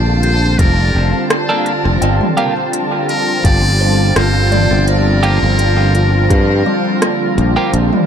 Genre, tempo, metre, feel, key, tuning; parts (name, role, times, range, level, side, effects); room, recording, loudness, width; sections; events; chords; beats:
ambient dub; 84 BPM; 4/4; swing 54% on 16ths; G minor; A4 = 440 Hz
warm analog pad; sustained chords; 0.0-8.1 s; D3 to A5; -18 LUFS; right 1 dB; chorus
kalimba; arpeggios; 0.0-8.1 s; G3 to G5; -24 LUFS; left 2 dB; tape echo
modern bright fingered electric bass; bass; 0.0-7.9 s; F1 to G2; -13 LUFS; equal
trumpet with metal mute; melody; 0.2-7.3 s; Bb4 to D5; -19 LUFS; left 1 dB; tape echo
organic electronic drum kit; drums; 0.2-8.1 s; hi-hat, rim click, toms; -20 LUFS; equal; overdrive, dub echo
electronic kick drum; drums; 0.6-6.5 s; -14 LUFS; equal; overdrive
twelve-string electric guitar; stabs; 1.5-7.7 s; Bb3 to A4; -22 LUFS; right 2 dB; dub echo
wind-like tuned noise texture; texture; 2.7-8.1 s; F3 to F4; -24 LUFS; left 1 dB; built-in reverb
light reverb; -11 LUFS; side -8 dB against mid
0.0-8.1 A section
0.0 Bbmaj7; 2.0 Gm7
0.59 1.30 | 2.02 2.73 3.45 4.16 | 4.88 5.59 6.30 7.02 | 7.73